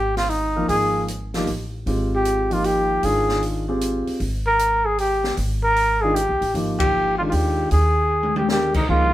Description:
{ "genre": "modal jazz", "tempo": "154 BPM", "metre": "3/4", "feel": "swing 66% on 8ths", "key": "Ab lydian", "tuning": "A4 = 440 Hz", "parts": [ { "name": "mellow trumpet", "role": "melody", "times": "0.0-9.1 s", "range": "Eb4 to Bb4", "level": "-20 LUFS", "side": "equal", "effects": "none" }, { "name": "upright bass", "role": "bass", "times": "0.0-9.1 s", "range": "Ab1 to Eb2", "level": "-24 LUFS", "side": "equal", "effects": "none" }, { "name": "open jazz drum kit", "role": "drums", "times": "0.2-8.8 s", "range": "crash cymbal, hi-hat, kick drum, ride cymbal, snare drum, toms", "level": "-29 LUFS", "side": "left 2 dB", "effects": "none" }, { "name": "warm grand piano", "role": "accompaniment", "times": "0.6-9.1 s", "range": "Eb3 to Bb4", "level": "-24 LUFS", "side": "equal", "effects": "none" } ], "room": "light reverb", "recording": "band playing live in one room", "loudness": "-18 LUFS", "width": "side -14 dB against mid", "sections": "0.0-8.9 A section", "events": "band accent 6.7; drum fill 8.1-8.5", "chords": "0.0 Abmaj9" }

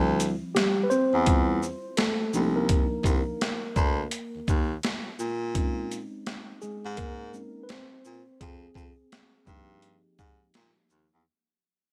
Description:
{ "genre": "hip hop, jazz-hop", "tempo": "84 BPM", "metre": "4/4", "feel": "swing 63% on 16ths", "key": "unclear", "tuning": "A4 = 440 Hz", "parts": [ { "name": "mellow tine electric piano", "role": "accompaniment", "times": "0.0-11.2 s", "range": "F3 to C5", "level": "-31 LUFS", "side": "equal", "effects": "none" }, { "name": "clear baritone saxophone", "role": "bass", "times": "0.0-11.2 s", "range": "C2 to Bb2", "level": "-31 LUFS", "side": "equal", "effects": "none" }, { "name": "boom bap sampler-style drum kit", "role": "drums", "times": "0.2-11.1 s", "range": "hi-hat, kick drum, shaker, snare drum", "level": "-30 LUFS", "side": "equal", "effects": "none" } ], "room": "moderate lush hall reverb, RT60 2.3 s", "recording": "big arena sound", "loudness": "-27 LUFS", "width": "mono", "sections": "0.0-11.3 A section", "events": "fade-out 0.0-11.3; tine electric piano solo 0.0-11.3", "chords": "0.0 Dm11; 2.3 Cm11; 5.2 Bbm11; 8.4 Fm11" }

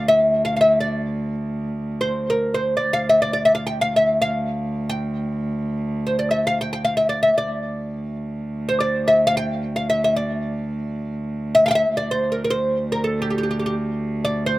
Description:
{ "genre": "Turkish makam ensemble", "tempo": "free time", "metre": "none", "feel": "none", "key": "D makam ussak", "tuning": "A4 = 440 Hz", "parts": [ { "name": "oud", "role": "melody", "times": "0.0-14.6 s", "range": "G4 to G5", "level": "-18 LUFS", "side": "equal", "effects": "none" }, { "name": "rich cello", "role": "drone", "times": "0.0-14.6 s", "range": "D2", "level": "-26 LUFS", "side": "right 1 dB", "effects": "stereo widening" } ], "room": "light reverb", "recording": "recorded outdoors, with no room sound", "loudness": "-19 LUFS", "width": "side -17 dB against mid", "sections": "0.0-14.6 A section", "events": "none", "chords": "none" }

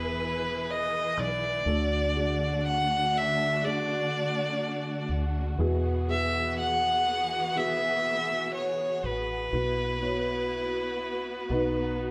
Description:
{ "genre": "pop", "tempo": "61 BPM", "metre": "4/4", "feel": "straight", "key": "E major", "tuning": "A4 = 440 Hz", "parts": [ { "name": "rich violin", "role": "melody", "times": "0.0-12.0 s", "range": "B4 to F#5", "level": "-30 LUFS", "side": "equal", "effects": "none" }, { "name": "dark upright piano", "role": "accompaniment", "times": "0.0-12.1 s", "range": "A2 to C#5", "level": "-37 LUFS", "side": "equal", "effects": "none" }, { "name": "warm studio string section", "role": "sustained chords", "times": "0.0-12.1 s", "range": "D3 to B4", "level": "-36 LUFS", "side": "equal", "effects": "none" }, { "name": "deep dub fingered electric bass", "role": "bass", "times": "0.0-12.1 s", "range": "E1 to E2", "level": "-35 LUFS", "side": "equal", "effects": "none" } ], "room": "wet studio reverb, RT60 0.6 s", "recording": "band playing live in one room", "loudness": "-28 LUFS", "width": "mono", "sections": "0.0-12.1 A section", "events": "none", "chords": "0.0 E; 1.7 D; 5.6 Eadd9; 9.5 Bsus4; 11.5 B" }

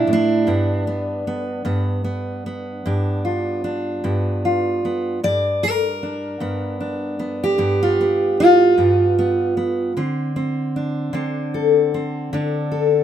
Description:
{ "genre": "acoustic country blues, solo or duo", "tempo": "51 BPM (dotted quarters)", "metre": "12/8", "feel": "straight", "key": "G mixolydian", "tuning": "A4 = 444 Hz", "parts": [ { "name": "fingerpicked steel-string acoustic guitar", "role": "solo", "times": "0.0-13.0 s", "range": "G2 to D5", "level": "-18 LUFS", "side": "equal", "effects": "none" } ], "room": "moderate studio reverb, RT60 0.6 s", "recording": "minimal, uncompressed stereo recording", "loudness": "-18 LUFS", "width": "side -10 dB against mid", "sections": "0.0-13.0 A section", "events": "none", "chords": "0.5 G7; 10.0 D7(no3)" }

